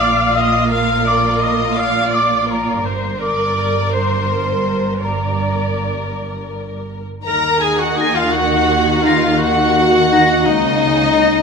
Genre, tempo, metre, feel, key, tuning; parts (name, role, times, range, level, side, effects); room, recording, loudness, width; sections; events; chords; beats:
cinematic, emotional film score for orchestra; 56 BPM (dotted quarters); 6/8; rubato; A4 = 439 Hz
warm studio violin section; melody; 0.0-11.4 s; F4 to Bb5; -20 LUFS; left 2 dB
silver concert flute; second line; 0.0-11.4 s; Bb5 to Bb6; -20 LUFS; equal
warm studio violin section; second line; 0.0-11.4 s; Eb4 to F5; -22 LUFS; left 2 dB
dark studio viola section; accompaniment; 0.0-11.4 s; Eb4 to F5; -22 LUFS; equal
dark studio double bass section; bass; 0.0-11.4 s; G1 to Eb2; -23 LUFS; right 5 dB
dark symphonic cello section; bass; 0.0-11.4 s; G2 to Eb3; -23 LUFS; right 2 dB
mellow French horn section; sustained chords; 7.2-11.4 s; Bb3 to Eb4; -22 LUFS; left 5 dB
clear oboe; second line; 7.3-11.4 s; Eb4 to Bb4; -23 LUFS; right 1 dB
warm clarinet; second line; 8.0-11.3 s; Eb4; -24 LUFS; equal
moderate concert hall reverb, RT60 2.4 s; -13 LUFS; side -5 dB against mid
0.0-7.3 A section; 7.3-11.4 B section
0.0 Bb; 2.8 Gm; 7.3 Ebm
| 0.71 1.76 | 2.83 3.92 | 5.03 6.15 | 7.27 8.34 | 9.41 10.47